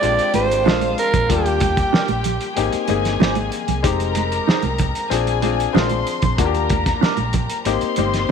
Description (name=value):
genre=lush 1970s-style soul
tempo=94 BPM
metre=4/4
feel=straight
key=unclear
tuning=A4 = 439 Hz
part: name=raspy alto saxophone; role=melody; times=0.0-2.6 s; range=G4 to D5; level=-20 LUFS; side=right 4 dB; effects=none
part: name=dark studio string section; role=second line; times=0.0-8.3 s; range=F4 to C6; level=-25 LUFS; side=left 3 dB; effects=none
part: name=clear concert grand piano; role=accompaniment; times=0.0-8.3 s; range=G3 to Ab4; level=-23 LUFS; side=left 12 dB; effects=none
part: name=vintage muted fingered electric bass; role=bass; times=0.0-8.3 s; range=F1 to Eb2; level=-24 LUFS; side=equal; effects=none
part: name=cloth-damped thuddy drum kit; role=drums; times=0.0-8.3 s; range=hi-hat, kick drum, snare drum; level=-21 LUFS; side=right 1 dB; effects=none
part: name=congas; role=percussion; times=0.3-8.3 s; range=none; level=-28 LUFS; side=right 13 dB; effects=none
part: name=mellow electric guitar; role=riff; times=0.7-8.3 s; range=D4 to C5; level=-25 LUFS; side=right 14 dB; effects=none
room=light reverb, studio ambience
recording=1960s-style stereo with parts hard left and right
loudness=-16 LUFS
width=side -6 dB against mid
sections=0.0-8.3 A section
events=none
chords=0.0 Bb7; 1.3 Ebmaj7; 2.6 Abmaj7; 3.8 Fm7; 5.1 Bb7; 6.4 Ebmaj7; 7.7 Abmaj7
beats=0.02 0.66 | 1.30 1.93 2.57 3.20 | 3.84 4.48 5.11 5.75 | 6.38 7.02 7.66 8.29